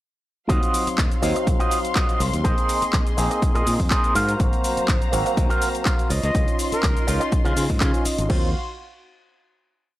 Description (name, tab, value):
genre	filtered disco house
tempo	123 BPM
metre	4/4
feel	swing 53% on 16ths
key	Eb dorian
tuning	A4 = 440 Hz
part	barky tine electric piano	accompaniment	0.5-8.5 s	Gb3 to F5	-28 LUFS	equal	phaser, sidechain pumping
part	dark symphonic string section	sustained chords	0.5-8.5 s	Gb3 to C6	-29 LUFS	left 1 dB	sidechain pumping
part	electric guitar with an envelope filter	riff	0.5-8.5 s	F4 to Ab5	-25 LUFS	right 1 dB	harmonic tremolo, sidechain pumping
part	modern bright fingered electric bass	bass	0.5-8.5 s	Ab1 to Db3	-25 LUFS	equal	sidechain pumping
part	electronic kick drum	drums	0.5-8.4 s	none	-22 LUFS	equal	studio reverb
part	house drum kit	drums	0.5-8.4 s	crash cymbal, handclaps, hi-hat, shaker	-28 LUFS	left 1 dB	sidechain pumping on hats, studio reverb, sidechain pumping on perc, sidechain pumping on cymbals
part	breathy bright jazz flute	melody	6.2-7.2 s	Bb4 to Eb5	-28 LUFS	equal	vintage 12-bit sampler grit, sidechain pumping
room	little or no reverb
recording	dry, gritty hardware recording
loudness	-19 LUFS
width	side -16 dB against mid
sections	0.5-8.3 drop; 8.3-10.0 final chord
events	drop 0.5-8.3; clean electric guitar fill 7.6-8.3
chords	0.5 Ebm69; 2.4 Bb9sus4; 4.2 Ab13; 6.1 Dbmaj9; 8.3 Ebm69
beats	| 0.49 0.98 1.47 1.96 | 2.45 2.93 3.42 3.91 | 4.40 4.88 5.37 5.86 | 6.35 6.84 7.33 7.81 | 8.30